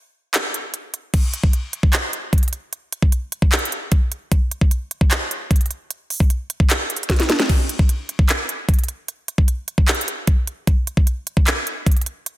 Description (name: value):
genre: hip hop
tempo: 151 BPM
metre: 4/4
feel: half-time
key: none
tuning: none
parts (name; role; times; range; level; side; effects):
- trap drum kit; drums; 0.3-12.4 s; crash cymbal, handclaps, hi-hat, kick drum, snare drum; -16 LUFS; equal; none
room: light reverb, digital ambience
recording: dense, heavily limited modern master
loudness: -17 LUFS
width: side -16 dB against mid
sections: 0.0-1.1 A section; 1.1-12.4 B section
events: break 0.0-1.1; drum fill 7.1-7.5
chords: none